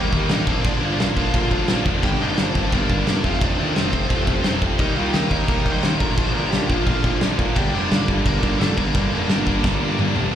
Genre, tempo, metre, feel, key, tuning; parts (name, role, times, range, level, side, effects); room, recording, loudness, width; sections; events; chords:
punk rock; 174 BPM; 4/4; straight; G minor; A4 = 441 Hz
biting lead guitar; melody; 0.0-10.0 s; A3 to C6; -27 LUFS; equal; overdrive, slapback echo
distorted electric guitar; riff; 0.0-10.3 s; F2 to Eb4; -25 LUFS; left 12 dB; overdrive, slapback echo
distorted electric guitar; riff; 0.0-10.3 s; F2 to Eb4; -26 LUFS; right 13 dB; overdrive
fuzz picked electric bass; bass; 0.0-10.3 s; F1 to Bb2; -25 LUFS; equal; overdrive
loose indie drum kit; drums; 0.1-10.2 s; crash cymbal, kick drum, snare drum, toms; -22 LUFS; equal
little or no reverb; live gig heard through the venue's PA, club reverb; -18 LUFS; side -10 dB against mid
0.0-10.3 A section
drum fill 9.6-10.3
0.5 Bb; 3.2 F; 4.8 Eb; 6.0 Bb; 7.6 Gm